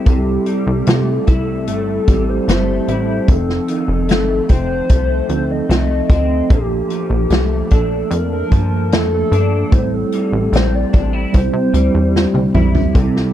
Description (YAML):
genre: indie pop, bedroom pop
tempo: 74 BPM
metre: 4/4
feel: straight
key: C mixolydian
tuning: A4 = 436 Hz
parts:
  - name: electric guitar through a small old amp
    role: accompaniment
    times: 0.0-13.3 s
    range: F2 to E4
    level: -22 LUFS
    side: left 4 dB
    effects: analog chorus, vibrato effect
  - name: mellow tine electric piano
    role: accompaniment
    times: 0.0-13.3 s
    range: F3 to A5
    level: -21 LUFS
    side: right 4 dB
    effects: medium stereo tremolo, cassette tape
  - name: warbly nostalgic lead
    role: melody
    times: 0.1-12.5 s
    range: G4 to Eb5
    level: -22 LUFS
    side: left 1 dB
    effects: lush chorus, analog delay
  - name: plucky analog bass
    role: bass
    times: 0.1-13.3 s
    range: F1 to C3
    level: -18 LUFS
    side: equal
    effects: none
  - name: unplugged drum kit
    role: drums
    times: 0.1-13.3 s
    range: hi-hat, kick drum, snare drum, toms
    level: -15 LUFS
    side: equal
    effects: none
room: light reverb, small room ambience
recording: dark, warm production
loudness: -13 LUFS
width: side -11 dB against mid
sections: 0.0-13.0 A section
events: drum fill 12.1-13.0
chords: 0.1 C6; 3.3 F7; 6.5 Bbmaj7; 9.7 Am7; 11.3 Cmaj7